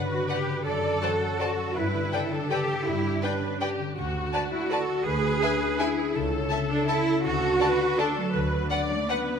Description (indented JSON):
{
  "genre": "classical, orchestral ballroom waltz",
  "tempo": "164 BPM",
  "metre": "3/4",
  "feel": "uneven beats, rubato",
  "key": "unclear",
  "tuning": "A4 = 440 Hz",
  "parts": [
    { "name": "rich symphonic viola section", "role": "accompaniment", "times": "0.0-9.4 s", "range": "F#4 to D5", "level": "-30 LUFS", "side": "equal", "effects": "none" },
    { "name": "concert harp", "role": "arpeggios", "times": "0.0-9.4 s", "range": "F#2 to A4", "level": "-32 LUFS", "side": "left 7 dB", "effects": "none" },
    { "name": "rich studio cello section", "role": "bass", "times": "0.0-9.4 s", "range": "F#3 to A4", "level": "-27 LUFS", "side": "right 2 dB", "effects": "none" },
    { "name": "clear studio violin section", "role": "melody", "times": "0.3-9.2 s", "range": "F#5 to A5", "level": "-34 LUFS", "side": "left 2 dB", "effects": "none" },
    { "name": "clear studio violin section", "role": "second line", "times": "0.3-9.2 s", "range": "A4 to F#5", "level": "-35 LUFS", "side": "left 2 dB", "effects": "none" },
    { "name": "clear studio double bass section", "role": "bass", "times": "0.7-8.6 s", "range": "C#2 to G2", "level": "-34 LUFS", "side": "right 3 dB", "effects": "none" }
  ],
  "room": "moderate concert hall reverb, RT60 1.9 s",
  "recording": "minimal, uncompressed stereo recording",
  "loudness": "-24 LUFS",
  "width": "side -7 dB against mid",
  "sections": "0.0-9.4 A section",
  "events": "none",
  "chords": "0.0 Gmaj7; 0.7 D/F#; 1.8 G; 4.0 Bm7/D (rootless); 5.1 E7/D; 6.1 A/C#; 7.2 D; 8.3 Bm/D",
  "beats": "0.30 | 0.66 1.02 1.40 | 1.76 2.12 2.51 | 2.87 3.23 3.61 | 3.97 4.33 4.70 | 5.06 5.42 5.79 | 6.15 6.51 6.89 | 7.25 7.61 7.99 | 8.34 8.71 9.09"
}